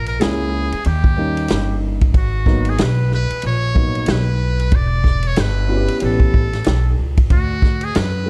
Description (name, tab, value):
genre	hip hop, jazz-hop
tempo	93 BPM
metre	4/4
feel	swing 59% on 16ths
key	unclear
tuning	A4 = 440 Hz
part	trumpet with metal mute	melody	0.0-8.3 s	F#4 to D5	-27 LUFS	equal	slapback echo
part	upright bass	bass	0.0-8.3 s	E1 to F#2	-22 LUFS	equal	none
part	vintage drum kit	drums	0.1-8.1 s	hi-hat, kick drum, ride cymbal, snare drum	-20 LUFS	equal	none
part	dark concert grand piano	accompaniment	0.2-8.3 s	F#3 to G4	-25 LUFS	equal	none
room	small room ambience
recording	dark, warm production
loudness	-17 LUFS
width	mono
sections	0.0-8.3 A section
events	none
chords	0.0 A#m7b5; 0.9 D#7; 2.1 G#m7; 4.7 Em; 6.0 A7; 7.3 D